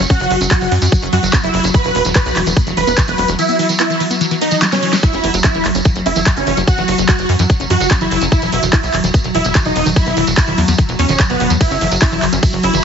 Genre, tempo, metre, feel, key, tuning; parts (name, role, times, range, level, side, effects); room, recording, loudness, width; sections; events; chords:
psychedelic trance; 146 BPM; 4/4; straight; A4 = 436 Hz
evolving wavetable pad; sustained chords; 0.0-12.8 s; F#3; -21 LUFS; left 1 dB; ensemble chorus, built-in reverb, phaser, sidechain pumping
wide unison pluck; riff; 0.0-12.8 s; D#3 to C#4; -22 LUFS; moving between left 4 dB and right 4 dB; auto-pan, sidechain pumping, tape echo
tight sequencer bass; bass; 0.0-12.8 s; E1 to F#2; -19 LUFS; equal
big-room dance drum kit; drums; 0.0-12.8 s; handclaps, hi-hat, ride cymbal, snare drum; -20 LUFS; equal; overdrive
tambourine; percussion; 0.0-12.8 s; -24 LUFS; right 3 dB
dense compressed supersaw; melody; 0.1-12.8 s; B3 to B4; -18 LUFS; right 1 dB; phaser, sidechain pumping, ping-pong delay
electronic kick drum; drums; 0.1-12.5 s; -12 LUFS; equal
light reverb; heavily compressed radio sound, multiband compression, nothing above 7.8 kHz; -12 LUFS; side -7 dB against mid
0.0-12.8 A section
drum fill 4.6-5.0
0.0 F#5; 1.7 E5; 5.0 F#5; 8.3 E5; 11.6 F#5